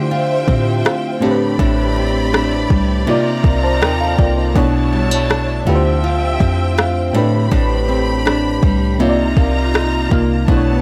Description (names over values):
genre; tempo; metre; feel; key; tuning
contemporary R&B; 81 BPM; 4/4; straight; unclear; A4 = 440 Hz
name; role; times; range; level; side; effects
mellow FM electric piano; accompaniment; 0.0-10.8 s; A2 to A5; -21 LUFS; equal; chorus, phaser
rich studio string section; sustained chords; 0.0-10.8 s; F3 to B5; -25 LUFS; equal; none
nylon-string guitar; arpeggios; 0.0-10.8 s; A2 to F4; -22 LUFS; equal; tape echo
clean 808-style bass; bass; 0.0-10.8 s; A1 to D3; -21 LUFS; equal; none
smooth R&B drum kit; drums; 0.5-10.7 s; kick drum, rim click; -18 LUFS; equal; overdrive
swell; sound effects; 10.7-10.8 s; none; -26 LUFS; equal; none
room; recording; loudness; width
light reverb; none; -16 LUFS; mono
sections
0.0-10.8 A section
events
break 0.0-4.6; swell 10.7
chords
0.0 Dm11; 1.2 Am11; 3.1 Cm11; 4.6 Bm11; 5.7 Dm11; 7.1 Am11; 9.0 Cm11